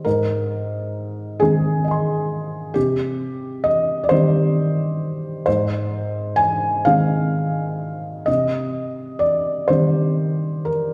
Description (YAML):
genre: neoclassical minimalist piano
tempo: 44 BPM (dotted quarters)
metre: 6/8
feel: uneven beats, rubato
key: C minor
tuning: A4 = 442 Hz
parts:
  - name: felt-muted upright piano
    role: solo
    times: 0.0-10.9 s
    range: Ab2 to C6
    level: -21 LUFS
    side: equal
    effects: none
room: wet scoring stage reverb, RT60 1.8 s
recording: recorded in a church or concert hall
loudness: -21 LUFS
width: mono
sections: 0.0-10.9 A section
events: none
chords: 0.1 Ab; 2.8 Cm; 5.5 Ab; 8.3 Cm